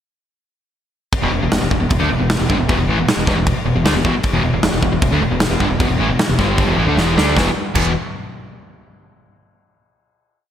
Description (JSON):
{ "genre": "hard rock", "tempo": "154 BPM", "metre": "4/4", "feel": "straight", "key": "E minor", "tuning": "A4 = 440 Hz", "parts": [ { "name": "big rock drum kit", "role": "drums", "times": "1.1-7.8 s", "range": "crash cymbal, kick drum, snare drum", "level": "-19 LUFS", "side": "equal", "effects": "gated reverb" }, { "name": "overdriven electric guitar", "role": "riff", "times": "1.2-7.9 s", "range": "E2 to D4", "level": "-20 LUFS", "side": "equal", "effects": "none" }, { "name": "overdriven semi-hollow guitar", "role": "riff", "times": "1.2-7.9 s", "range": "E2 to D4", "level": "-21 LUFS", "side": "equal", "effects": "wide subtle chorus" }, { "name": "growling fingered electric bass", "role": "bass", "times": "1.2-7.9 s", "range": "E1 to D2", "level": "-21 LUFS", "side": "equal", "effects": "overdrive" } ], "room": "light reverb", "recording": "bright 1980s-style digital production", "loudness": "-14 LUFS", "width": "side -10 dB against mid", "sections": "1.1-7.4 riff; 7.4-8.9 final chord", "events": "drum fill 7.0-7.4", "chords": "1.1 Em; 7.4 E5", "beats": "| 1.13 1.52 1.91 2.30 | 2.69 3.08 3.47 3.86 | 4.25 4.63 5.02 5.41 | 5.80 6.19 6.58 6.97 | 7.37 7.76" }